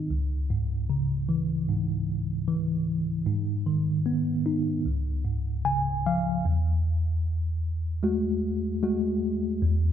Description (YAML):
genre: folk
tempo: 76 BPM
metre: 4/4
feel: straight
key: unclear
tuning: A4 = 436 Hz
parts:
  - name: tine electric piano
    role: solo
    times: 0.0-9.9 s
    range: C#2 to G#5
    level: -24 LUFS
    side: equal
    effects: medium stereo tremolo
room: moderate scoring stage reverb, RT60 1.8 s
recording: none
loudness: -25 LUFS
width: side -9 dB against mid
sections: 0.0-6.4 A section; 6.4-9.9 B section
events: none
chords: 0.1 C#m; 3.3 G#m; 4.8 C#; 6.4 F#madd9/E